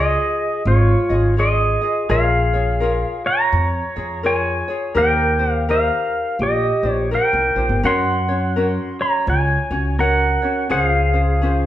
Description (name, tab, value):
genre	Hawaiian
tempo	84 BPM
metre	4/4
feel	swing 61% on 8ths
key	unclear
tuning	A4 = 440 Hz
part	pedal steel guitar	melody	0.0-11.7 s	F4 to C6	-18 LUFS	equal	none
part	ukulele	accompaniment	0.0-11.7 s	Db4 to Eb5	-24 LUFS	left 2 dB	none
part	upright bass	bass	0.0-11.6 s	G1 to Gb2	-20 LUFS	equal	none
room	wet large studio reverb, RT60 1.2 s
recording	band playing live in one room, nothing above 10.3 kHz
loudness	-16 LUFS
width	side -12 dB against mid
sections	0.0-11.7 A section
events	none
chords	0.0 Dbadd9; 2.1 Bbm7; 5.0 Eb6; 7.8 Gb; 10.7 Dbmaj7